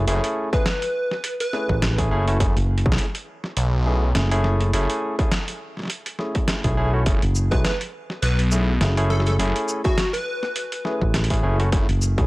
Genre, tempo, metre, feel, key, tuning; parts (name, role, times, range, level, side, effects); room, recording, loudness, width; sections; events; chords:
glitch hop; 103 BPM; 4/4; swing 56% on 16ths; F# minor; A4 = 440 Hz
overdriven tine electric piano; stabs; 0.0-12.3 s; A3 to G#4; -27 LUFS; equal; sidechain pumping, analog delay
fingered electric bass; bass; 0.0-12.3 s; F#1 to B1; -20 LUFS; equal
phased detuned saw bass; bass; 0.1-11.9 s; F#1 to B1; -20 LUFS; equal; phaser, tube saturation
boom bap sampler-style drum kit; drums; 0.1-12.3 s; hi-hat, shaker, snare drum; -27 LUFS; equal
plucky unison lead; melody; 0.5-2.0, 7.5-10.9 s; F#4 to B4; -28 LUFS; equal; lush chorus, analog delay
electronic kick drum; drums; 0.5-12.3 s; -22 LUFS; equal; distortion
little or no reverb; dry, gritty hardware recording, cassette tape; -19 LUFS; side -21 dB against mid
0.0-12.3 A section
0.0 F#m7